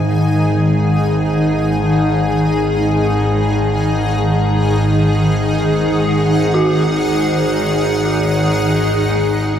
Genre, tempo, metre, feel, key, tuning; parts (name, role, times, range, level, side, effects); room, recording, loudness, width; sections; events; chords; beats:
dark ambient drone; free time; A4 = 440 Hz
granular cloud pad; sustained chords; 0.0-9.6 s; D#3 to G#5; -15 LUFS; equal; built-in reverb
dark detuned synth bell; arpeggios; 0.0-9.6 s; D#4 to F#4; -25 LUFS; right 2 dB; chorus, diffuse ambient delay
overtone-sweeping drone; drone; 0.0-9.6 s; G#1 to G#2; -17 LUFS; equal; chorus, built-in reverb, phaser
wet cathedral reverb, RT60 5.7 s; in a vast, echoing space; -13 LUFS; side -9 dB against mid
0.0-9.6 A section
0.0 G#5
free time